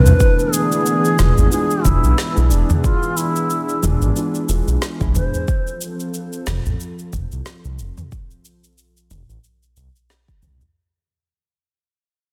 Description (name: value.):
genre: organic downtempo.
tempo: 91 BPM.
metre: 4/4.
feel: swing 57% on 16ths.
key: E phrygian dominant.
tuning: A4 = 440 Hz.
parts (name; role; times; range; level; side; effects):
breathy bass bansuri; melody; 0.0-5.8 s; D4 to C5; -25 LUFS; equal; tape echo.
felt-muted upright piano; accompaniment; 0.0-5.5 s; E3 to F4; -29 LUFS; equal; sidechain pumping, delay.
warm analog pad; sustained chords; 0.0-10.7 s; E3 to A5; -27 LUFS; equal; chorus, sidechain pumping.
concert harp; arpeggios; 0.0-3.4 s; D3 to E4; -30 LUFS; equal; delay.
smooth gliding synth bass; bass; 0.0-10.7 s; E1 to C2; -19 LUFS; equal; none.
deep house drum kit; drums; 0.1-10.7 s; shaker, snare drum, toms; -28 LUFS; equal; studio reverb.
udu; percussion; 0.1-10.7 s; none; -22 LUFS; equal; none.
electronic kick drum; drums; 0.2-10.4 s; none; -21 LUFS; equal; studio reverb.
room: light reverb, small room reverb.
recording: dense, heavily limited modern master.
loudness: -18 LUFS.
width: mono.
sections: 0.2-10.8 A section.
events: fade-out 0.2-10.8.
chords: 0.2 E7b9; 5.5 F.